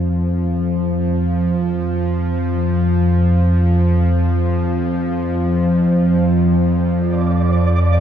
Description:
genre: dark ambient drone.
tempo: free time.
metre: none.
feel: none.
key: unclear.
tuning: A4 = 438 Hz.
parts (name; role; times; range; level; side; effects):
bowed-like drone; drone; 0.0-8.0 s; F2 to F3; -14 LUFS; equal; built-in reverb.
flickering grainy texture; texture; 6.9-8.0 s; D5; -24 LUFS; right 4 dB; built-in reverb.
room: wet cathedral reverb, RT60 5.9 s.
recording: dark, warm production.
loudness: -14 LUFS.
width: side -9 dB against mid.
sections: 0.0-8.0 A section.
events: none.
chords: 0.0 Dm/F.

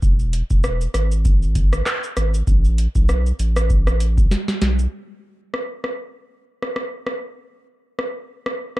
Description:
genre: dancehall.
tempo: 98 BPM.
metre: 4/4.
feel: swing 56% on 16ths.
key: unclear.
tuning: A4 = 442 Hz.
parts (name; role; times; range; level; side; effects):
saturated sub bass; bass; 0.0-4.9 s; E1 to B1; -19 LUFS; equal; none.
booming analog drum machine; drums; 0.0-8.8 s; handclaps, hi-hat, kick drum, rim click, shaker, snare drum; -19 LUFS; equal; none.
room: little or no reverb.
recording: dark, warm production.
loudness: -18 LUFS.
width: side -17 dB against mid.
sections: 0.0-4.9 A section; 4.9-8.8 B section.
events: drum fill 4.3-4.9.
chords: none.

